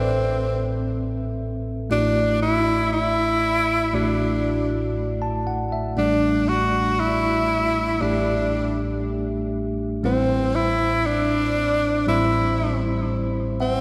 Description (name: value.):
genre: pop.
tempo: 118 BPM.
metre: 4/4.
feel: straight.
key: unclear.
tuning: A4 = 442 Hz.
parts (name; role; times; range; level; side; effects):
clear tenor saxophone; melody; 0.0-13.8 s; C4 to F#4; -25 LUFS; equal; digital delay.
bell-like tine electric piano; accompaniment; 0.0-13.8 s; A1 to A5; -26 LUFS; equal; none.
room: wet lush hall reverb, RT60 3.0 s.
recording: dreamy mix soaked in reverb.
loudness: -22 LUFS.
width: mono.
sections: 0.0-13.8 A section.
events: tine electric piano fill 5.0-6.0, 13.4-13.8.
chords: 0.0 Amadd9; 1.9 Dadd9/A; 6.0 Gsus2/A; 10.0 C/A.